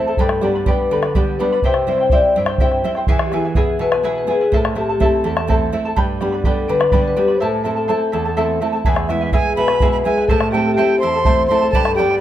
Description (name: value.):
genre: andean folk, Andean ensemble.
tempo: 83 BPM (dotted quarters).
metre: 6/8.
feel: straight.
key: A minor.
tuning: A4 = 440 Hz.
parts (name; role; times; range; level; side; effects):
vibraphone with soft mallets; melody; 0.0-12.2 s; E4 to D5; -18 LUFS; left 3 dB; none.
charango; accompaniment; 0.0-12.2 s; E4 to B5; -22 LUFS; equal; none.
nylon-string guitar; accompaniment; 0.0-12.2 s; E2 to G#4; -22 LUFS; right 5 dB; none.
bombo; percussion; 0.2-12.0 s; none; -19 LUFS; equal; none.
breathy bright large quena; second line; 9.1-12.2 s; E5 to C6; -21 LUFS; right 4 dB; none.
room: moderate recital hall reverb, RT60 1.4 s.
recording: close, detailed microphones.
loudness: -14 LUFS.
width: side -12 dB against mid.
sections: 0.0-8.9 A section; 8.9-12.2 A section.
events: break 7.4-8.9.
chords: 0.2 G; 1.6 C; 3.1 E; 4.5 Am; 6.0 G; 7.4 Am; 8.9 E; 10.3 Am.